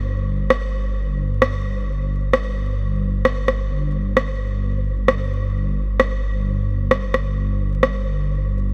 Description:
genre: future garage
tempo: 131 BPM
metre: 4/4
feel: swing 66% on 16ths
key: unclear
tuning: A4 = 440 Hz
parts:
  - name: dark detuned saw bass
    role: bass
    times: 0.0-8.7 s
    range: G1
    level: -24 LUFS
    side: equal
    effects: none
  - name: electronic rim click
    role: drums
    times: 0.5-8.0 s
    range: none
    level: -24 LUFS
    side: equal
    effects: overdrive
room: light reverb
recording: vinyl crackle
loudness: -21 LUFS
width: mono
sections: 0.0-8.7 A section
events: none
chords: none

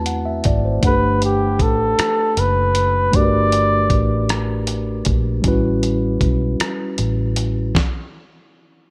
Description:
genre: slow six-eight R&B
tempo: 52 BPM (dotted quarters)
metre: 6/8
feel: straight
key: G major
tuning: A4 = 440 Hz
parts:
  - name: mellow tine electric piano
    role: accompaniment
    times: 0.0-7.8 s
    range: G3 to A5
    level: -24 LUFS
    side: equal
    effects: none
  - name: vintage muted fingered electric bass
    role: bass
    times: 0.0-7.7 s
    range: F#1 to E2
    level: -23 LUFS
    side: equal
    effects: none
  - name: dusty soul sampler-style drum kit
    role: drums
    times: 0.1-7.9 s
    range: hi-hat, kick drum, rim click, snare drum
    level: -22 LUFS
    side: equal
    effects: none
  - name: warm flugelhorn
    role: melody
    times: 0.9-4.3 s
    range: G4 to D5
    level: -21 LUFS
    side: equal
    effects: none
room: little or no reverb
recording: none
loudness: -18 LUFS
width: mono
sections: 0.0-8.9 A section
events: stop 7.8-8.9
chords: 0.0 D13; 0.8 Gmaj9; 5.4 A13; 7.8 N.C.

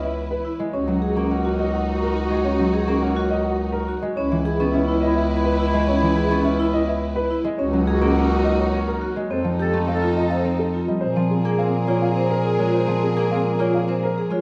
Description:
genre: classical, minimalist pattern music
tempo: 105 BPM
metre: 3/4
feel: straight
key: Bb minor from 11.0 s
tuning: A4 = 441 Hz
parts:
  - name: dark concert grand piano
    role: melody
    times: 0.0-14.4 s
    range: G4 to F#5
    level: -30 LUFS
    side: equal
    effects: none
  - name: warm clarinet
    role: second line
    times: 0.0-14.3 s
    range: E4 to A4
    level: -32 LUFS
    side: equal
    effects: none
  - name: concert harp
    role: accompaniment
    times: 0.0-14.4 s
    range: E3 to C#4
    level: -27 LUFS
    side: equal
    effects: none
  - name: clear symphonic string section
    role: sustained chords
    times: 0.0-14.3 s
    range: D#4 to B4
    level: -33 LUFS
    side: equal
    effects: none
  - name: bright bass clarinet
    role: bass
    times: 0.0-14.3 s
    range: C#2 to Bb2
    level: -27 LUFS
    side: equal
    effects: none
  - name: vibraphone with medium mallets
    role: arpeggios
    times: 0.4-14.4 s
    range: C4 to C#5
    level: -27 LUFS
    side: equal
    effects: none
room: moderate recital hall reverb, RT60 1.4 s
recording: dark, warm production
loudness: -21 LUFS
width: mono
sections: 0.0-11.0 A section; 11.0-14.4 B section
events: none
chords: 0.0 C#m7; 0.7 D#m7/C#; 4.2 C#m7; 7.6 D#m7/C#; 9.3 F7; 11.0 Bb7(no3)

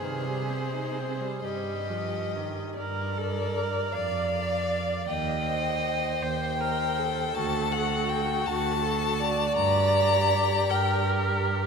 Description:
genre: classical, slow romantic movement for string quartet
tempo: 41-56 BPM (dotted quarters)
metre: 6/8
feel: rubato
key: G minor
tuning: A4 = 440 Hz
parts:
  - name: rich violin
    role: melody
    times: 0.0-11.1 s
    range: C5 to Bb5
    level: -30 LUFS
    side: left 7 dB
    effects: none
  - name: clear violin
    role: second line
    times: 0.0-11.7 s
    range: F#4 to D5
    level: -34 LUFS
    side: left 2 dB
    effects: none
  - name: clear viola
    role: accompaniment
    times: 0.0-11.7 s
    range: Eb3 to Eb5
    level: -29 LUFS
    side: right 2 dB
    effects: none
  - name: rich cello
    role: bass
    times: 0.0-11.7 s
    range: D2 to C3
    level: -31 LUFS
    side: right 5 dB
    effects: none
room: wet cathedral reverb, RT60 6.0 s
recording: in a vast, echoing space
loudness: -25 LUFS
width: side -5 dB against mid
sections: 0.0-2.8 A section; 2.8-11.7 B section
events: none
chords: 0.0 Cm; 2.8 Gm; 3.9 Dm/F; 5.1 Cm/Eb; 7.4 D; 9.6 Gm

